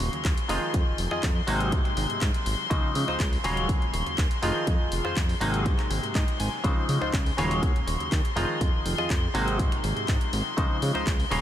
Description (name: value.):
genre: filtered disco house.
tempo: 122 BPM.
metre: 4/4.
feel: straight.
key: unclear.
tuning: A4 = 440 Hz.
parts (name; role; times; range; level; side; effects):
clav; accompaniment; 0.0-11.4 s; C3 to F5; -30 LUFS; right 1 dB; phaser, sidechain pumping, low-pass filter.
bright chamber string section; sustained chords; 0.0-11.4 s; C6; -34 LUFS; left 6 dB; sidechain pumping, low-pass filter.
direct-recorded clean electric guitar; riff; 0.0-11.4 s; Eb4 to Ab5; -34 LUFS; left 1 dB; lush chorus, sidechain pumping, low-pass filter.
fat analog bass; bass; 0.0-11.4 s; Eb1 to Db3; -30 LUFS; equal; sidechain pumping, low-pass filter.
punchy analog drum machine; drums; 0.0-11.4 s; finger snaps, handclaps, hi-hat; -35 LUFS; equal; none.
electronic kick drum; drums; 0.2-11.2 s; none; -26 LUFS; equal; none.
room: light reverb.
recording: none.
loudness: -23 LUFS.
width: side -11 dB against mid.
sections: 0.0-11.4 A section.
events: clean electric guitar fill 5.9-6.6.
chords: 0.5 Fm7; 1.5 Ab7; 2.7 Dbmaj9; 3.4 Ebm11; 4.4 Fm7; 5.4 Ab7; 6.6 Dbmaj9; 7.4 Ebm11; 8.4 Fm7; 9.3 Ab7; 10.6 Dbmaj9.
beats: 0.25 | 0.74 1.23 1.73 2.22 | 2.71 3.20 3.69 4.18 | 4.68 5.17 5.66 6.15 | 6.64 7.13 7.63 8.12 | 8.61 9.10 9.59 10.09 | 10.58 11.07.